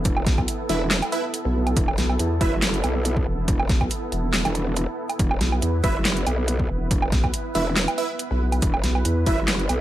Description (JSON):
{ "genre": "heavy wobble dubstep", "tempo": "140 BPM", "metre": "4/4", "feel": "swing 54% on 16ths, half-time", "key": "unclear", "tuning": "A4 = 441 Hz", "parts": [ { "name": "supersaw pad", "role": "sustained chords", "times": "0.0-9.8 s", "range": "B3 to B4", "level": "-31 LUFS", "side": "right 1 dB", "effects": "sidechain pumping, low-pass filter" }, { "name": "vowel-sweep wobble bass", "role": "bass", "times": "0.0-9.2 s", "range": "E1 to E2", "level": "-22 LUFS", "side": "equal", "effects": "chorus, overdrive" }, { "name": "growl bass", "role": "bass", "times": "0.1-9.8 s", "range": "E1 to B1", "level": "-24 LUFS", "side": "equal", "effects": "chorus, overdrive" }, { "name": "dubstep drum kit", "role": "drums", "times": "0.1-9.8 s", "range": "handclaps, hi-hat, snare drum, woodblock", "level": "-25 LUFS", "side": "right 1 dB", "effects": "none" }, { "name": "electronic kick drum", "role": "drums", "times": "0.1-9.4 s", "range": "none", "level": "-24 LUFS", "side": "equal", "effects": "overdrive" }, { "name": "supersaw stab", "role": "stabs", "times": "0.7-2.5, 5.8-9.4 s", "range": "E4 to E5", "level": "-28 LUFS", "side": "right 3 dB", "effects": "dub echo" } ], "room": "little or no reverb", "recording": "none", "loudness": "-20 LUFS", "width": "side -13 dB against mid", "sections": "0.0-9.8 A section", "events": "none", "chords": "0.0 E5", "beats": "| 0.05 0.48 0.91 1.34 | 1.76 2.19 2.62 3.05 | 3.48 3.91 4.34 4.76 | 5.19 5.62 6.05 6.48 | 6.91 7.34 7.76 8.19 | 8.62 9.05 9.48" }